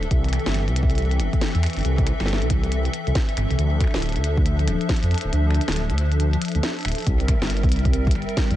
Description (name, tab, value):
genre	IDM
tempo	138 BPM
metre	4/4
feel	swing 62% on 16ths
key	D minor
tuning	A4 = 440 Hz
part	hollow soft pad	sustained chords	0.0-8.6 s	E3 to E5	-27 LUFS	left 1 dB	ensemble chorus, sidechain pumping
part	dark detuned saw bass	bass	0.0-8.6 s	D1 to F2	-21 LUFS	equal	tube saturation
part	glitchy drum kit	drums	0.0-8.6 s	finger snaps, hi-hat, snare drum	-30 LUFS	equal	dub echo
part	electronic kick drum	drums	0.1-8.5 s	none	-22 LUFS	equal	none
room	digital ambience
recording	echo-heavy mix, nothing above 10.7 kHz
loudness	-19 LUFS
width	side -13 dB against mid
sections	0.0-7.1 A section; 7.1-8.6 B section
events	kick drops out 5.3-7.1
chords	0.1 Am; 3.6 Dmadd9; 7.1 C7